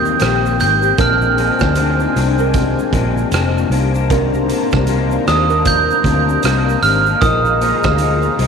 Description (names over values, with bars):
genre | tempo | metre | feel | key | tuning
indie pop, bedroom pop | 77 BPM | 4/4 | swing 60% on 16ths | unclear | A4 = 441 Hz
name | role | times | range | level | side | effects
glockenspiel with soft plastic mallets | melody | 0.0-8.0 s | Eb6 to G6 | -17 LUFS | right 6 dB | analog chorus, tape echo
electric guitar through a small old amp | accompaniment | 0.0-8.5 s | Bb2 to G4 | -20 LUFS | left 14 dB | ensemble chorus, warbly pitch drift
warm analog pad | sustained chords | 0.0-8.5 s | Eb3 to Bb5 | -24 LUFS | left 4 dB | chorus
vintage muted fingered electric bass | bass | 0.0-8.5 s | F1 to Eb2 | -18 LUFS | equal | none
raw garage drum kit | drums | 0.1-8.5 s | hi-hat, kick drum, rim click, shaker | -21 LUFS | right 3 dB | none
kalimba | second line | 1.0-8.4 s | D4 to C5 | -24 LUFS | right 12 dB | analog chorus, tape echo
room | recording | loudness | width
light reverb, studio ambience | 1960s-style stereo with parts hard left and right | -12 LUFS | side -6 dB against mid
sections
0.0-8.5 A section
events
none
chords
0.0 Eb6; 1.0 Bb9; 3.7 Cm9; 7.2 Bb7sus4